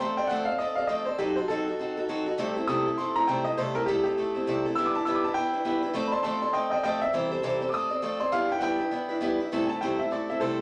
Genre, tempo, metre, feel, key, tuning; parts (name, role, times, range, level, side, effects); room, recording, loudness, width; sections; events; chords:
rock; 202 BPM; 4/4; swing 60% on 8ths; A4 = 440 Hz
bright upright piano; melody; 0.0-10.6 s; G4 to E6; -30 LUFS; equal
picked steel-string acoustic guitar; accompaniment; 0.0-10.6 s; C3 to D5; -30 LUFS; equal
wet large studio reverb, RT60 0.7 s; -28 LUFS; mono
0.0-9.5 A section; 9.5-10.6 B section
upright piano solo 0.0-9.5
0.0 F6; 1.2 F#dim7; 2.4 C6; 4.8 G6; 5.9 F6; 7.1 C6; 7.7 F6; 8.3 G6; 9.5 C6